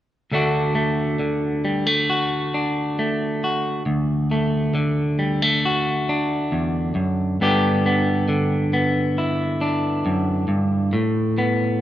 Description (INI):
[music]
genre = folk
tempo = 68 BPM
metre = 4/4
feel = straight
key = D major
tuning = A4 = 441 Hz
[part]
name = electric guitar at the edge of break-up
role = accompaniment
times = 0.3-11.8 s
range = D2 to G4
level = -19 LUFS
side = equal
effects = none
[sound]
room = light reverb, digital ambience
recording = rough home demo mix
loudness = -19 LUFS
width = side -12 dB against mid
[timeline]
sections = 0.3-11.8 A section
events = none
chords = 0.3 D; 7.4 G; 10.9 Asus2